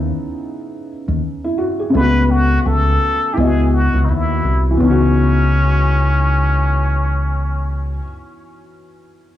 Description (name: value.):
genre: lo-fi hip hop.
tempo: 84 BPM.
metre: 4/4.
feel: swing 59% on 16ths.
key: C# minor.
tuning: A4 = 440 Hz.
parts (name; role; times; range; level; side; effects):
felt-muted upright piano; accompaniment; 0.0-9.4 s; C#3 to D#5; -20 LUFS; left 1 dB; low-pass filter, cassette tape.
deep dub fingered electric bass; bass; 0.0-8.0 s; B#1 to D#2; -15 LUFS; left 1 dB; tube saturation.
trumpet with plunger mute; melody; 2.0-8.0 s; C#4 to B4; -20 LUFS; left 1 dB; low-pass filter, cassette tape, tape echo.
room: light reverb, small room ambience.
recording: home recording on cassette, small room reverb.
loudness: -14 LUFS.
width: side -12 dB against mid.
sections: 0.0-4.8 A section; 4.8-7.7 B section.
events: none.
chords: 0.0 C#m9; 1.9 A69/C#; 3.4 C#m11.